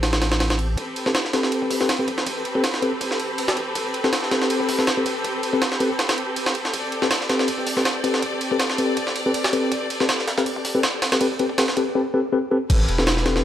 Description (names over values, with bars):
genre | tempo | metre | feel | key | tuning
drum and bass, jungle | 161 BPM | 4/4 | swing 54% on 16ths | A minor | A4 = 442 Hz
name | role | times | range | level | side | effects
bright studio string section | sustained chords | 0.0-13.4 s | C4 to D5 | -27 LUFS | equal | none
mellow tine electric piano | stabs | 0.0-13.4 s | C4 to B4 | -23 LUFS | left 2 dB | slow stereo tremolo, low-pass filter, dub echo
saturated sub bass | bass | 0.0-13.4 s | E1 to C2 | -23 LUFS | equal | high-pass filter
jungle sampler-style drum kit | drums | 0.0-13.4 s | crash cymbal, hi-hat, kick drum, ride cymbal, snare drum | -23 LUFS | right 1 dB | overdrive, high-pass filter on cymbals, high-pass filter on snare, high-pass filter on hats, high-pass filter on kick
room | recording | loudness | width
moderate plate reverb, RT60 2.1 s | vinyl crackle | -19 LUFS | side -11 dB against mid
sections
0.8-12.7 A section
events
build-up 0.8-12.7; filter sweep on tine electric piano 0.8-12.7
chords
0.0 Am9